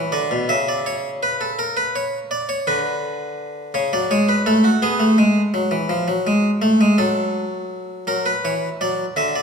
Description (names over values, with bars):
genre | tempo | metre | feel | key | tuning
classical, baroque-style two-part invention for harpsichord | 55 BPM (dotted quarters) | 6/8 | straight | unclear | A4 = 440 Hz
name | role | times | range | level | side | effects
harpsichord | solo | 0.0-9.4 s | B2 to E5 | -18 LUFS | equal | none
room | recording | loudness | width
wet recital hall reverb, RT60 1.8 s | minimal, uncompressed stereo recording | -17 LUFS | side -5 dB against mid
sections
0.0-8.1 A section; 8.1-9.4 B section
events
none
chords
0.5 C#m7; 1.6 Bmadd9/C#; 2.7 Bm/D; 3.7 F#m/C#; 4.8 Eadd9; 5.9 Fm; 7.0 F#m; 8.1 F#7